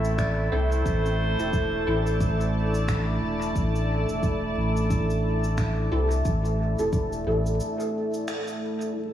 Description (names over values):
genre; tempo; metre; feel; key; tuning
ambient dub; 89 BPM; 4/4; swing 58% on 16ths; A minor; A4 = 438 Hz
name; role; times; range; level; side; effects
deep dark ambient pad; sustained chords; 0.0-9.1 s; A3 to A5; -28 LUFS; right 1 dB; chorus, built-in reverb
soft dub sub bass; bass; 0.0-7.6 s; E1 to C2; -26 LUFS; equal; none
electronic cabasa and finger snaps; drums; 0.0-9.1 s; none; -40 LUFS; equal; overdrive, low-pass filter on perc, low-pass filter on snare, low-pass filter on room, dub echo
warm clarinet; melody; 0.2-2.5 s; C5 to D5; -32 LUFS; equal; dub echo
electronic kick drum; drums; 0.2-7.1 s; none; -28 LUFS; equal; none
filtered dub chord stab; stabs; 0.5-7.5 s; C4 to A4; -32 LUFS; equal; phaser, ensemble chorus, dub echo
drifting glass-harmonics texture; texture; 9.0-9.1 s; A3 to A4; -41 LUFS; equal; chorus, built-in reverb
room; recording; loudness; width
moderate lush hall reverb, RT60 1.9 s, digital ambience; dreamy mix soaked in reverb, vinyl crackle, small room ambience; -23 LUFS; side -11 dB against mid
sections
0.0-8.9 A section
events
break 7.6-8.9; band accent 8.3-8.6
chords
0.0 Am